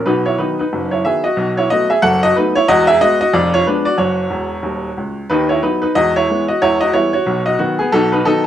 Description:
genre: jazz, stride piano.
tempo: 183 BPM.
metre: 4/4.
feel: swing 60% on 8ths.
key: B major.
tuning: A4 = 440 Hz.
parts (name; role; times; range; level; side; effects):
clear upright piano; solo; 0.0-8.5 s; D#1 to F#5; -13 LUFS; equal; none.
room: light reverb.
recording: close, detailed microphones.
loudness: -13 LUFS.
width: side -10 dB against mid.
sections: 0.1-8.5 A section.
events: upright piano fill 4.3-5.3.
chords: 0.1 B; 1.4 B7; 2.7 E; 3.3 Fdim7; 4.0 F#5; 5.3 B/D#; 6.0 E; 6.6 Em; 7.3 B.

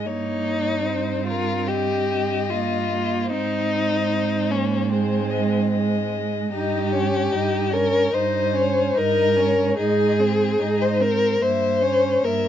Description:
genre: classical, slow romantic movement for string quartet.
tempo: 74 BPM.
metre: 4/4.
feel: rubato.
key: Ab major.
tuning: A4 = 442 Hz.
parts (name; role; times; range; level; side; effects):
rich violin; melody; 0.0-12.5 s; Bb4 to E5; -30 LUFS; left 9 dB; none.
rich viola; accompaniment; 0.0-12.5 s; Ab3 to Eb4; -28 LUFS; right 3 dB; none.
warm cello; bass; 0.0-12.5 s; G2 to Ab2; -25 LUFS; right 6 dB; none.
warm violin; second line; 0.1-12.5 s; C4 to C5; -22 LUFS; left 3 dB; none.
room: moderate studio reverb, RT60 0.8 s.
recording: nothing above 7.8 kHz.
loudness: -19 LUFS.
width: side -10 dB against mid.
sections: 0.0-12.5 A section.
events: none.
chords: 0.1 Eb7/G; 3.3 Ab; 6.5 Eb7/G; 9.8 Ab; 11.4 Gdim7.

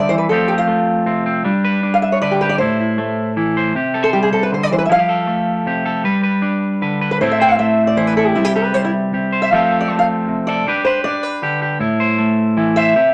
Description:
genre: highlife.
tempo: 104 BPM (dotted quarters).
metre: 12/8.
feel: straight.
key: unclear.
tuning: A4 = 440 Hz.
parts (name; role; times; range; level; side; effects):
fingerpicked old ladder-braced acoustic guitar; melody; 0.0-13.1 s; E4 to G5; -19 LUFS; equal; none.
clean electric guitar; accompaniment; 0.0-13.1 s; A2 to C5; -19 LUFS; equal; none.
room: wet studio reverb, RT60 0.6 s.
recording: none.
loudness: -17 LUFS.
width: mono.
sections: 0.0-13.1 A section.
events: steel-string acoustic guitar solo 0.0-13.1.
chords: 0.3 Fadd9; 1.5 G; 2.6 Am; 3.8 C; 4.9 Fadd9; 6.1 G; 7.2 Am; 8.4 C; 9.5 Fadd9; 10.7 G; 11.8 Am.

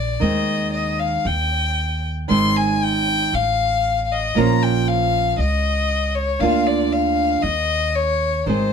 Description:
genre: tango.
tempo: 116 BPM.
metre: 4/4.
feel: rubato.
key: Ab major.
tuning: A4 = 440 Hz.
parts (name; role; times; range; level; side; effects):
warm violin; second line; 0.0-8.7 s; C5 to C6; -20 LUFS; left 4 dB; none.
upright bass; bass; 0.0-8.7 s; Ab1 to Eb2; -24 LUFS; right 1 dB; none.
nylon-string guitar; accompaniment; 0.2-8.7 s; D3 to C5; -20 LUFS; right 4 dB; none.
room: moderate studio reverb, RT60 0.6 s.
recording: none.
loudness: -17 LUFS.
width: side -6 dB against mid.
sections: 0.0-8.7 A section.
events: violin solo 0.0-8.7.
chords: 0.2 Ab/Eb; 1.2 Eb; 2.3 Ab; 3.3 F/A; 4.4 Bbmadd9; 5.4 Dbsus2; 6.4 Bb/D; 7.4 Dbsus2/Eb.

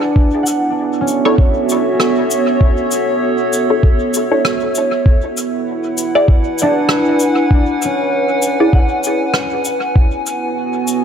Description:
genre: ambient dub.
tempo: 98 BPM.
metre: 4/4.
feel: swing 57% on 16ths.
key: B dorian.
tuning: A4 = 440 Hz.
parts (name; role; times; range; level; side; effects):
warbly tape-like pad; sustained chords; 0.0-11.0 s; B3 to G#5; -17 LUFS; right 1 dB; chorus, built-in reverb.
concert harp; arpeggios; 0.0-11.0 s; C#4 to F#5; -19 LUFS; equal; vintage 12-bit sampler grit, tape echo.
electronic kick drum; drums; 0.2-10.1 s; none; -11 LUFS; equal; none.
cabasa and rim click; drums; 0.5-11.0 s; none; -20 LUFS; equal; dub echo.
filtered dub chord stab; stabs; 1.3-8.8 s; D4 to D5; -18 LUFS; equal; phaser, analog chorus, dub echo.
room: light reverb, small room ambience.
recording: none.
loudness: -12 LUFS.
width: side -8 dB against mid.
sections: 0.0-11.0 A section.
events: break 0.0.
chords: 0.2 Bm11; 5.1 E7; 10.0 B9sus4.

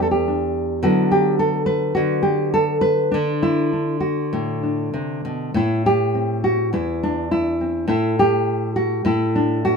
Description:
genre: folk, solo fingerstyle acoustic guitar.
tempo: 103 BPM.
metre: 4/4.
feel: rubato.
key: A dorian.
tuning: A4 = 445 Hz.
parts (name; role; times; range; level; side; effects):
nylon-string guitar; solo; 0.0-9.8 s; E2 to B4; -18 LUFS; equal; none.
room: moderate small room reverb, RT60 0.5 s.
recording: minimal, uncompressed stereo recording.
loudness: -18 LUFS.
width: side -5 dB against mid.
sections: 0.0-5.5 A section; 5.5-9.8 B section.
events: none.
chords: 0.0 Em7; 0.8 Bm/D; 3.1 Dadd9; 5.5 Am; 7.9 Dadd9/A.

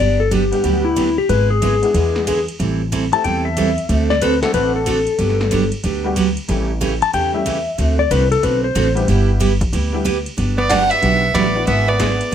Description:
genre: country, western swing.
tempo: 185 BPM.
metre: 4/4.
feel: swing 64% on 8ths.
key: G major.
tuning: A4 = 440 Hz.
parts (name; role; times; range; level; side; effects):
clean lap steel guitar; second line; 0.0-9.1 s; E4 to A5; -18 LUFS; left 5 dB; none.
picked steel-string acoustic guitar; accompaniment; 0.0-12.3 s; C#3 to A4; -21 LUFS; right 6 dB; none.
upright bass; bass; 0.0-12.3 s; G1 to E2; -19 LUFS; equal; none.
80s electronic pad drums; drums; 0.3-12.3 s; hi-hat, kick drum, ride cymbal, snare drum; -26 LUFS; equal; none.
honky-tonk upright piano; accompaniment; 0.5-12.2 s; G3 to F#5; -25 LUFS; left 3 dB; none.
warm fiddle; melody; 10.6-12.3 s; D5 to F#5; -17 LUFS; right 2 dB; plate reverb.
archtop guitar, miked and amplified; second line; 10.6-12.3 s; B3 to D4; -22 LUFS; right 1 dB; none.
room: moderate studio reverb, RT60 0.6 s.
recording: none.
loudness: -14 LUFS.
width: side -9 dB against mid.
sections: 0.0-10.4 A section; 10.4-12.3 B section.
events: electric slide guitar solo 0.0-10.4.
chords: 0.0 Gmaj7; 1.3 E7/G#; 2.6 Am7; 3.9 D7; 5.2 Gmaj7; 6.5 A7; 7.8 D7; 9.1 G6; 10.4 Gmaj7; 11.7 E7/G#.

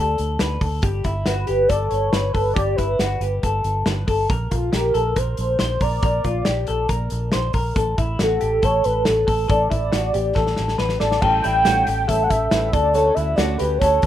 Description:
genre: jangly indie pop.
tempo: 139 BPM.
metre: 4/4.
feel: straight.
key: unclear.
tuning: A4 = 440 Hz.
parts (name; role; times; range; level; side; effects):
electric guitar through a small old amp; arpeggios; 0.0-14.1 s; E4 to C5; -24 LUFS; left 4 dB; phaser.
vintage muted fingered electric bass; bass; 0.0-14.1 s; G1 to D2; -24 LUFS; right 1 dB; none.
loose indie drum kit; drums; 0.2-14.1 s; crash cymbal, hi-hat, kick drum, snare drum; -24 LUFS; equal; none.
warm velvety synth lead; melody; 1.3-14.1 s; A4 to G5; -21 LUFS; right 1 dB; chorus, tape echo.
fingerpicked steel-string acoustic guitar; accompaniment; 11.2-14.1 s; A2 to A4; -28 LUFS; right 5 dB; none.
room: small room ambience.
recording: rough home demo mix.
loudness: -18 LUFS.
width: side -11 dB against mid.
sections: 0.0-11.2 A section; 11.2-14.1 B section.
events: drum fill 10.4-11.2.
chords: 0.0 D5; 0.8 G; 4.3 Bb6; 7.8 Asus4; 11.2 A7; 12.7 Dmaj7.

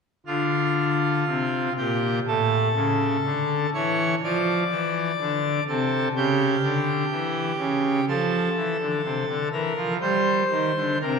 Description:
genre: classical, chorale-style piece for pipe organ.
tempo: 62 BPM.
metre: 4/4.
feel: rubato.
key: D minor.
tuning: A4 = 440 Hz.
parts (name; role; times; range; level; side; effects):
pipe organ, full organ; solo; 0.3-11.2 s; A2 to D5; -21 LUFS; equal; none.
room: wet church reverb, RT60 3.1 s.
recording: minimal, uncompressed stereo recording.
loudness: -21 LUFS.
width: side -5 dB against mid.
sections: 0.3-11.2 A section.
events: none.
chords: 0.3 Dm; 2.3 A; 4.2 Dm; 6.1 C#dim; 8.1 Dm; 10.0 Eb.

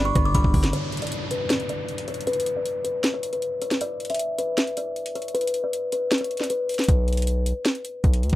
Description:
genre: hip hop, trap.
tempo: 156 BPM.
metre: 4/4.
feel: half-time.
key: unclear.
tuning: A4 = 439 Hz.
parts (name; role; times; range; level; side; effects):
buzzing kalimba; melody; 0.0-6.9 s; B4 to D6; -26 LUFS; left 2 dB; low-pass filter.
string-like resonator pluck; second line; 0.0-0.7 s; D5; -35 LUFS; left 2 dB; none.
concert harp; accompaniment; 0.0-3.3 s; G2 to D4; -31 LUFS; left 1 dB; low-pass filter.
warm analog pad; sustained chords; 0.0-0.7 s; G3 to D5; -42 LUFS; equal; none.
distorted 808-style bass; bass; 0.0-0.7, 6.9-8.4 s; G1 to D2; -22 LUFS; equal; distortion.
trap drum kit; drums; 0.2-8.4 s; hi-hat, kick drum, rim click, snare drum; -24 LUFS; equal; none.
downlifter; sound effects; 0.7-3.8 s; none; -35 LUFS; equal; none.
room: little or no reverb.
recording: dark, warm production.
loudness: -22 LUFS.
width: side -15 dB against mid.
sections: 0.7-8.4 A section.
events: break 0.7-6.9; kick muted 6.1-6.9.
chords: 0.0 G; 0.7 N.C..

